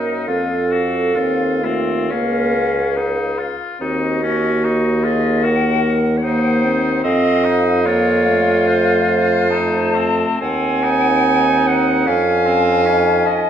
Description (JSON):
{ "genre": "classical, slow romantic movement for wind quintet", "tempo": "60-76 BPM", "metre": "4/4", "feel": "rubato", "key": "Db major from 10.4 s", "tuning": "A4 = 444 Hz", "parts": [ { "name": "concert flute", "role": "melody", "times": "0.0-13.5 s", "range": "Eb5 to A5", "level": "-24 LUFS", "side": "left 7 dB", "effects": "none" }, { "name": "clear oboe", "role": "second line", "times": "0.0-13.4 s", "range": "C4 to Gb4", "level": "-22 LUFS", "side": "left 3 dB", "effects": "none" }, { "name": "warm French horn", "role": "accompaniment", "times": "0.0-13.5 s", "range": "A3 to Eb4", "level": "-22 LUFS", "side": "left 2 dB", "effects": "none" }, { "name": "warm clarinet", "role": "accompaniment", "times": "0.0-13.5 s", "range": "F4 to Ab5", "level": "-20 LUFS", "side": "right 6 dB", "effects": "none" }, { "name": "dark bassoon", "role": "bass", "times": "0.0-13.5 s", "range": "Db2 to Gb2", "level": "-19 LUFS", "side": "right 1 dB", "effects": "none" } ], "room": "wet recital hall reverb, RT60 1.6 s", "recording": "dark, warm production", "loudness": "-14 LUFS", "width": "side -9 dB against mid", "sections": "0.0-13.5 A section", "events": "none", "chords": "0.3 F; 2.1 Bbm/Db; 3.8 Cm7b5/Eb; 7.0 F7; 10.4 Ab7/Eb; 12.1 Db/F" }